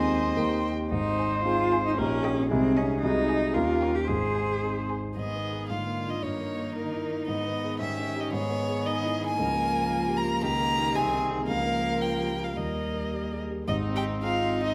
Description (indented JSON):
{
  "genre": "quick classical-period movement for piano quintet",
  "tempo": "113 BPM",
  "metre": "2/4",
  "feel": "rubato",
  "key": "Ab major, G# minor from 5.2 s, Ab major from 9.4 s",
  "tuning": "A4 = 440 Hz",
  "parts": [
    { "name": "warm violin", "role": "melody", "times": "0.0-14.7 s", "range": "A#4 to Bb5", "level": "-33 LUFS", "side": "equal", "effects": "none" },
    { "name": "rich cello", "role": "second line", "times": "0.0-14.7 s", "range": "D3 to Ab4", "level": "-33 LUFS", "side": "equal", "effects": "none" },
    { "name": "rich violin", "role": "second line", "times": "0.0-14.7 s", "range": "D#4 to Eb5", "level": "-40 LUFS", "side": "equal", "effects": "none" },
    { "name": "dark concert grand piano", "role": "accompaniment", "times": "0.0-14.7 s", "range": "Ab1 to A#4", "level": "-32 LUFS", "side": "equal", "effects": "none" },
    { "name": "dark viola", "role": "accompaniment", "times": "0.0-14.7 s", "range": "Bb3 to C5", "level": "-36 LUFS", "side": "equal", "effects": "none" }
  ],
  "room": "moderate recital hall reverb, RT60 1.6 s",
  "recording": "none",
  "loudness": "-27 LUFS",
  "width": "mono",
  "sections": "0.0-5.2 A section; 5.2-13.7 B section; 13.7-14.7 A section",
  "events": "none",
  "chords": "0.4 Eb; 0.9 Ab; 2.0 Eb7/Bb; 2.5 Ab/C; 3.0 Ab7/C; 3.5 Eb7; 4.1 Ab; 5.2 G#m; 5.7 A#7/G#; 6.2 D#7/G; 7.3 G#m; 7.8 D#7/G#; 8.3 G#m; 9.4 Bbm7/Db; 10.4 Eb7/Db; 11.0 Ab/C; 11.5 Bbm/Db; 12.6 Eb; 13.7 Ab",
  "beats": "0.37 | 0.91 1.45 | 1.98 2.51 | 3.03 3.55 | 4.08 4.63 | 5.17 5.70 | 6.22 6.75 | 7.28 7.80 | 8.32 8.85 | 9.39 9.91 | 10.43 10.95 | 11.48 12.01 | 12.56 13.12 | 13.68 14.22"
}